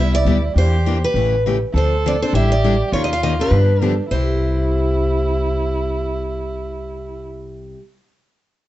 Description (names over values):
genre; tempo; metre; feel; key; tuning
acoustic string swing (jazz manouche); 202 BPM; 4/4; swing 57% on 8ths; C major; A4 = 440 Hz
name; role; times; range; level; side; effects
picked steel-string acoustic guitar; melody; 0.0-7.7 s; B4 to F5; -22 LUFS; right 1 dB; plate reverb
dark violin; second line; 0.0-7.2 s; D4 to A4; -25 LUFS; right 2 dB; none
picked steel-string acoustic guitar; accompaniment; 0.0-7.8 s; C3 to Bb4; -23 LUFS; left 2 dB; none
upright bass; bass; 0.0-7.7 s; A1 to G2; -19 LUFS; equal; none
room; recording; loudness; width
light reverb; dark, warm production, nothing above 8.0 kHz; -16 LUFS; side -14 dB against mid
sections
0.0-1.7 A section; 1.7-4.1 B section; 4.1-6.5 C section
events
none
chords
0.0 Cmaj7; 0.6 Em7b5; 1.2 A7; 1.7 Dm7; 2.3 A7sus4; 2.9 Eb9; 3.5 G7; 4.1 C